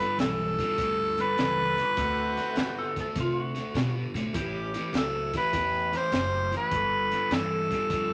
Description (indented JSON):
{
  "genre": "electric blues shuffle",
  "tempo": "101 BPM",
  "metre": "4/4",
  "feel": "swing 67% on 8ths",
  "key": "unclear",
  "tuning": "A4 = 441 Hz",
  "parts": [
    { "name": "growling tenor saxophone", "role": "melody", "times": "0.0-8.1 s", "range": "A4 to C5", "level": "-29 LUFS", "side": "equal", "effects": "none" },
    { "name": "overdriven semi-hollow guitar", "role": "riff", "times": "0.0-8.1 s", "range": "G2 to B3", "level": "-36 LUFS", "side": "equal", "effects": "phaser" },
    { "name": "clear saxophone section", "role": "stabs", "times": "0.0-7.7 s", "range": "A3 to A4", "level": "-40 LUFS", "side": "equal", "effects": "none" },
    { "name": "crunchy breakbeat drum kit", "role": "drums", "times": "0.0-8.1 s", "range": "hi-hat, kick drum, snare drum", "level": "-35 LUFS", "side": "equal", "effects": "none" },
    { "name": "upright bass", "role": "bass", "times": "0.2-8.1 s", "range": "F#1 to D3", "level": "-38 LUFS", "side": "equal", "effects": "none" },
    { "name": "clean lap steel guitar", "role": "second line", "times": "2.0-4.0 s", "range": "F4 to A4", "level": "-36 LUFS", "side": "equal", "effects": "none" }
  ],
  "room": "moderate studio reverb, RT60 0.7 s",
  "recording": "none",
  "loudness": "-28 LUFS",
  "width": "mono",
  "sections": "0.0-8.1 A section",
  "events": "none",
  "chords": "0.0 G9; 2.0 D9; 4.3 A9; 6.7 G9"
}